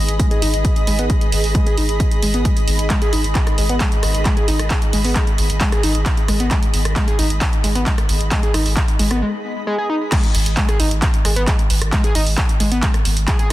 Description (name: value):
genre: driving peak-time techno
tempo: 133 BPM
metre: 4/4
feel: straight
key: G# minor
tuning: A4 = 440 Hz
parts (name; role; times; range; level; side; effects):
- warm sub bass; bass; 0.0-13.5 s; G#1; -19 LUFS; equal; overdrive, sidechain pumping, low-pass filter
- granular cloud pad; texture; 0.0-9.2 s; G#4 to B5; -26 LUFS; right 1 dB; built-in reverb, sidechain pumping
- punchy analog drum machine; drums; 0.1-13.5 s; crash cymbal, handclaps, hi-hat, rim click; -23 LUFS; right 1 dB; sidechain pumping on hats, sidechain pumping on cymbals
- overdriven synth lead; riff; 0.2-13.5 s; G#3 to G#4; -23 LUFS; left 1 dB; tube saturation, sidechain pumping, ping-pong delay
- electronic kick drum; drums; 0.2-13.4 s; none; -18 LUFS; equal; none
room: little or no reverb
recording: dense, heavily limited modern master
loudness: -15 LUFS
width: side -15 dB against mid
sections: 0.0-10.1 A section; 10.1-13.5 B section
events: filter sweep on analog synth lead 0.0-10.1; break 9.2-10.1; drop 10.1-13.5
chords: 0.0 G#m; 10.1 N.C.